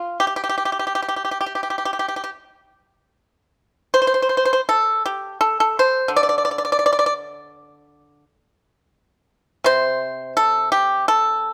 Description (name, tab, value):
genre	chinese traditional, Chinese solo plucked strings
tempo	83 BPM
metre	4/4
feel	rubato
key	unclear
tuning	A4 = 440 Hz
part	pipa	solo	0.0-11.5 s	C3 to D5	-20 LUFS	equal	none
room	light reverb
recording	close, detailed microphones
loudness	-20 LUFS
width	mono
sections	0.0-3.2 A section; 3.2-11.5 B section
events	none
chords	none